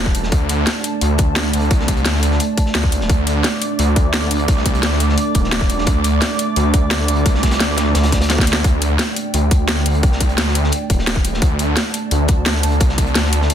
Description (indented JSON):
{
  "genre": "dark technical drum and bass",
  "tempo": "173 BPM",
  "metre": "4/4",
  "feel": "straight",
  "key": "unclear",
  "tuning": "A4 = 438 Hz",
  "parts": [
    { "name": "dark analog pad", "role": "sustained chords", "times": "0.0-13.5 s", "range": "A3 to D6", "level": "-22 LUFS", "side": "right 3 dB", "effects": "chorus, sidechain pumping" },
    { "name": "wide detuned saw bass", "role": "bass", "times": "0.0-13.5 s", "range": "Eb1 to D2", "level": "-18 LUFS", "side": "equal", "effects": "chorus, sidechain pumping" },
    { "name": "crunchy breakbeat drum kit", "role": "drums", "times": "0.1-13.5 s", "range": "hi-hat, snare drum", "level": "-28 LUFS", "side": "equal", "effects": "high-pass filter on hats, studio reverb, high-pass filter on snare, high-pass filter on room" },
    { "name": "drum and bass drum kit", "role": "drums", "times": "0.1-13.5 s", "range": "hi-hat, snare drum", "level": "-20 LUFS", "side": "equal", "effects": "overdrive, studio reverb" },
    { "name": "electronic kick drum", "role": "drums", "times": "0.1-13.1 s", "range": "none", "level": "-16 LUFS", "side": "equal", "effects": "overdrive, studio reverb" }
  ],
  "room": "light reverb, small room ambience",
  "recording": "dense, heavily limited modern master",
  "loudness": "-14 LUFS",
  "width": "side -9 dB against mid",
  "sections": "0.0-13.5 A section",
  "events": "drum fill 8.3-8.6",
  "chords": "0.0 D5",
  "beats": "| 0.32 0.67 1.01 1.36 | 1.71 2.06 2.40 2.75 | 3.10 3.44 3.79 4.14 | 4.48 4.83 5.18 5.52 | 5.87 6.22 6.56 6.91 | 7.26 7.60 7.95 8.30 | 8.64 8.99 9.34 9.69 | 10.03 10.38 10.73 11.07 | 11.42 11.77 12.11 12.46 | 12.81 13.15 13.50"
}